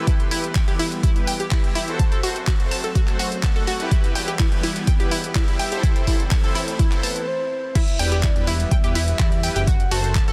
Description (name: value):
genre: progressive house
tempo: 125 BPM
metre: 4/4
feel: straight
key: E minor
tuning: A4 = 440 Hz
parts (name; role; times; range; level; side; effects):
- lush unison pad; sustained chords; 0.0-10.3 s; E3 to C4; -35 LUFS; equal; chorus, phaser, vintage 12-bit sampler grit, sidechain pumping
- soft supersaw; stabs; 0.0-10.3 s; E4 to F#5; -32 LUFS; equal; sidechain pumping, tape echo
- fat analog bass; bass; 0.0-10.3 s; E1 to E2; -30 LUFS; equal; sidechain pumping, high-pass filter
- analog pluck; arpeggios; 0.1-10.3 s; E4 to A6; -30 LUFS; equal; chorus, sidechain pumping, tape echo
- deep house drum kit; drums; 0.1-10.3 s; crash cymbal, handclaps, hi-hat, ride cymbal; -31 LUFS; equal; overdrive, soft clipping on snare
- electronic kick drum; drums; 0.1-10.3 s; none; -22 LUFS; equal; overdrive
- soft octave-layered synth lead; melody; 7.0-10.3 s; B4 to A5; -30 LUFS; equal; chorus
room: light reverb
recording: dense, heavily limited modern master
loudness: -21 LUFS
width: mono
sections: 0.0-7.8 A section; 7.8-10.3 B section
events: build-up 0.0-7.8; filter sweep on supersaw synth 0.0-7.8; filter sweep on analog synth pad 0.0-7.8; stop 7.3-7.8; drop 7.8-10.3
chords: 0.1 Em; 2.0 F#dim; 3.9 Em; 5.8 Am; 7.8 Em; 9.7 F#dim